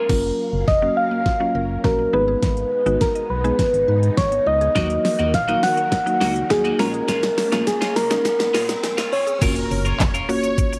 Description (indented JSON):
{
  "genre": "dance-pop",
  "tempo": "103 BPM",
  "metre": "4/4",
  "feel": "straight",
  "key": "F# major",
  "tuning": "A4 = 440 Hz",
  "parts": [
    { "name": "soft struck synth lead", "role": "melody", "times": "0.0-9.4 s", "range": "G#4 to F#5", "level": "-22 LUFS", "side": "equal", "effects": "chorus, tape echo" },
    { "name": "twelve-string electric guitar", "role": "riff", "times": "0.0-0.1, 4.8-10.8 s", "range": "G#3 to A#4", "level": "-32 LUFS", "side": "equal", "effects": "subtle chorus" },
    { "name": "noise sweep, riser and impact", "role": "sound effects", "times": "0.0-10.8 s", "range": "none", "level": "-38 LUFS", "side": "equal", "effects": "none" },
    { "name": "mallet-like synth pluck", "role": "accompaniment", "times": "0.1-10.7 s", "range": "F#3 to C#5", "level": "-28 LUFS", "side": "equal", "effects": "chorus, sidechain pumping" },
    { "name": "string machine, cellos", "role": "sustained chords", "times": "0.1-9.4 s", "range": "D#3 to E#5", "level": "-35 LUFS", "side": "equal", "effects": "phaser, ensemble chorus, sidechain pumping" },
    { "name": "mallet-like synth pluck", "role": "arpeggios", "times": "0.1-9.4 s", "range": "F#3 to E#5", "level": "-38 LUFS", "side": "equal", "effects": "none" },
    { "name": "organ-like FM bass", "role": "bass", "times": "0.1-10.2 s", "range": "E#1 to A#2", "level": "-28 LUFS", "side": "equal", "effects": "sidechain pumping" },
    { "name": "pop drum kit", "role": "drums", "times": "0.1-10.8 s", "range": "crash cymbal, handclaps, hi-hat, kick drum, shaker, snare drum", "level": "-25 LUFS", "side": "equal", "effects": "none" },
    { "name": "supersaw pad", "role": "melody", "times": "9.6-10.5 s", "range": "A#4 to C#5", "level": "-30 LUFS", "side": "equal", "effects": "sidechain pumping" }
  ],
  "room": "light reverb",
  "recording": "high-pass filter",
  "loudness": "-20 LUFS",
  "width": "mono",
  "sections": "0.1-9.4 A section; 9.4-10.8 B section",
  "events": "build-up 0.1-9.4; drum fill 0.1-9.4; filter sweep 0.1-9.4; drop 9.4-10.8; impact 9.4-10.8",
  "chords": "0.1 F#maj7; 2.1 G#m; 4.8 D#m; 6.8 A#m7; 9.4 F#maj7",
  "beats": "| 0.10 0.68 1.26 1.84 | 2.43 3.01 3.59 4.17 | 4.76 5.34 5.92 6.50 | 7.09 7.67 8.25 8.84 | 9.42 10.00 10.58"
}